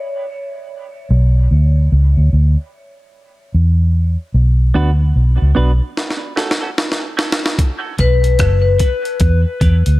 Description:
dub reggae; 74 BPM; 4/4; swing 62% on 16ths; B minor; A4 = 442 Hz
vibraphone with hard mallets; melody; 0.0-0.2, 8.0-8.8 s; B4 to C#5; -21 LUFS; left 6 dB; dub echo
vintage muted fingered electric bass; bass; 1.1-10.0 s; F#1 to E2; -11 LUFS; equal
clean electric guitar; accompaniment; 4.7-9.8 s; A3 to B4; -24 LUFS; right 3 dB; lush chorus, high-pass filter, dub echo
breakbeat sampler-style drum kit; drums; 6.0-10.0 s; hi-hat, kick drum, rim click, snare drum; -17 LUFS; equal
digital ambience; echo-heavy mix; -12 LUFS; side -18 dB against mid
0.0-7.6 A section; 7.6-10.0 B section
break 0.0-4.3; filter sweep on clean electric guitar 4.3-10.0; drum fill 6.0-7.6
0.0 N.C.; 1.1 Bm; 2.7 N.C.; 4.3 Bm; 6.0 F#m; 7.6 Bm; 9.2 Em
0.28 | 1.10 1.91 2.72 3.53 | 4.34 5.15 5.96 6.77 | 7.58 8.39 9.21

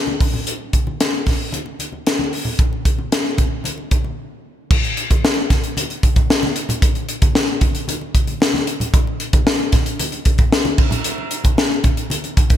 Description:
pop; 114 BPM; 4/4; straight
congas; percussion; 0.1-12.6 s; -28 LUFS; equal
crisp fusion drum kit; drums; 0.2-12.6 s; crash cymbal, hi-hat, kick drum, snare drum; -16 LUFS; equal; gated reverb
light reverb, small room ambience; bright 1980s-style digital production; -16 LUFS; side -11 dB against mid
0.0-4.7 A section; 4.7-12.6 B section
break 4.2-4.7
| 0.47 1.00 1.53 2.06 | 2.59 3.12 3.65 4.18 | 4.71 5.24 5.77 6.29 | 6.82 7.35 7.88 8.41 | 8.94 9.47 9.99 10.52 | 11.05 11.58 12.11

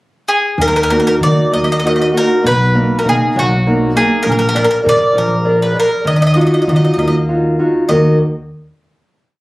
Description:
italian folk, Italian serenade; 66 BPM (dotted quarters); 6/8; straight; Eb harmonic minor; A4 = 436 Hz
mandolin; melody; 0.3-8.2 s; F#4 to Eb5; -15 LUFS; equal
nylon-string guitar; accompaniment; 0.6-8.2 s; B2 to D5; -14 LUFS; equal
upright bass; bass; 0.6-8.2 s; Bb1 to Eb3; -16 LUFS; equal
moderate studio reverb, RT60 0.7 s; recorded on a phone in the room, club reverb; -11 LUFS; side -20 dB against mid
0.0-0.6 pickup bar; 0.6-7.9 A section; 7.9-9.4 final chord
0.0 N.C.; 0.6 Ebm; 2.4 Bmaj7; 4.2 Bb7; 6.0 Ebmadd9; 7.9 Ebm
| 0.59 1.52 | 2.44 3.35 | 4.25 5.15 | 6.05 6.96 | 7.89

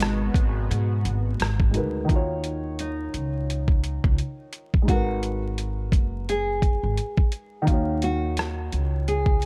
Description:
lo-fi hip hop; 86 BPM; 4/4; swing 57% on 16ths; Eb minor; A4 = 437 Hz
nylon-string guitar; melody; 0.0-9.5 s; Eb4 to Eb5; -33 LUFS; equal
dark upright piano; accompaniment; 0.0-9.5 s; Eb3 to F5; -32 LUFS; equal; cassette tape
warm analog pad; sustained chords; 0.0-2.1 s; Cb3 to Gb4; -34 LUFS; equal; chorus
upright bass; bass; 0.0-9.5 s; Gb1 to Ab2; -29 LUFS; equal
boom bap sampler-style drum kit; drums; 0.0-9.5 s; hi-hat, kick drum, rim click; -24 LUFS; equal
small room ambience; vinyl crackle; -25 LUFS; mono
0.0-2.1 A section; 2.1-9.5 B section
0.0 Abm9; 2.1 Ebm9; 4.9 Abm9; 7.7 Ebm9
0.00 0.70 1.40 | 2.09 2.79 3.49 4.19 | 4.88 5.58 6.28 6.98 | 7.67 8.37 9.07

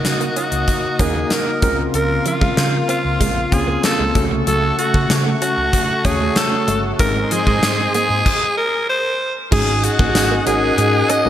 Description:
1980s-style pop; 95 BPM; 4/4; straight; A4 = 440 Hz
raspy alto saxophone; melody; 0.0-11.3 s; F4 to Eb5; -19 LUFS; equal; digital delay
tine electric piano; accompaniment; 0.0-11.3 s; Ab2 to Db5; -22 LUFS; equal; medium stereo tremolo, slapback echo
warm analog pad; sustained chords; 0.0-11.3 s; A3 to Eb6; -26 LUFS; left 1 dB; chorus
direct-recorded clean electric guitar; riff; 0.0-11.3 s; F3 to Db4; -28 LUFS; right 5 dB; analog chorus, slapback echo
hollow-body short-scale fingered electric bass; bass; 0.0-11.3 s; G1 to Db3; -22 LUFS; equal
gated 80s drum kit; drums; 0.0-11.2 s; crash cymbal, hi-hat, kick drum, snare drum, tambourine; -20 LUFS; equal
wet lush hall reverb, RT60 2.6 s; big arena sound; -15 LUFS; side -11 dB against mid
0.0-9.5 A section; 9.5-11.3 B section
stop 8.3-9.5
0.0 Ebm/Db; 1.6 Bbmadd9/Db; 4.2 Gbm; 7.0 Ab; 9.5 Ab7sus4
0.05 0.68 1.31 | 1.94 2.57 3.21 3.84 | 4.47 5.10 5.73 6.36 | 7.00 7.63 8.26 8.89 | 9.52 10.15 10.79

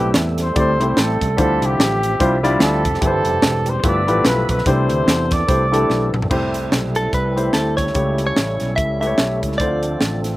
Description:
uptempo gospel; 146 BPM; 4/4; swing 58% on 8ths; C major; A4 = 440 Hz
warm flugelhorn; melody; 0.0-6.1 s; G4 to D5; -21 LUFS; equal
warm grand piano; accompaniment; 0.0-10.2 s; G2 to D5; -21 LUFS; left 1 dB; slapback echo
percussive tonewheel organ; sustained chords; 0.0-10.4 s; E3 to E5; -27 LUFS; right 3 dB; slow rotary speaker, overdrive
fingered electric bass; bass; 0.0-10.4 s; E1 to E2; -22 LUFS; equal
crisp fusion drum kit; drums; 0.1-10.3 s; crash cymbal, hi-hat, kick drum, snare drum, toms; -20 LUFS; equal
mellow French horn section; sustained chords; 6.3-10.4 s; G3 to F4; -30 LUFS; equal
direct-recorded clean electric guitar; melody; 7.0-10.2 s; A4 to E5; -22 LUFS; equal; slapback echo
little or no reverb; recorded outdoors, with no room sound; -15 LUFS; side -17 dB against mid
0.0-6.3 A section; 6.3-10.4 B section
drum fill 5.9-6.3
0.0 Am9; 1.4 Dm11; 3.0 C; 3.8 G13; 4.7 C69; 7.9 A7; 9.6 Dm7
0.15 0.56 0.97 | 1.38 1.79 2.20 2.61 | 3.02 3.43 3.84 4.25 | 4.66 5.07 5.48 5.89 | 6.30 6.71 7.12 7.54 | 7.95 8.36 8.77 9.18 | 9.60 10.01

